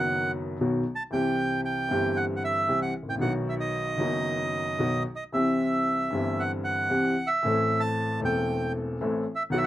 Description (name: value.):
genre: tango.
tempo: 115 BPM.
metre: 4/4.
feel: rubato.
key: unclear.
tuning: A4 = 441 Hz.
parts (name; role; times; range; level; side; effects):
bandoneon; melody; 0.0-9.7 s; D#5 to A5; -27 LUFS; right 2 dB; none.
warm baby grand piano; accompaniment; 0.0-9.7 s; E1 to A4; -27 LUFS; left 1 dB; none.
room: light reverb.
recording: rough home demo mix.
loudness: -24 LUFS.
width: side -14 dB against mid.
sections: 0.0-9.7 A section.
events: none.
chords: 0.0 B; 1.1 C; 3.2 B; 5.3 C; 7.4 Am.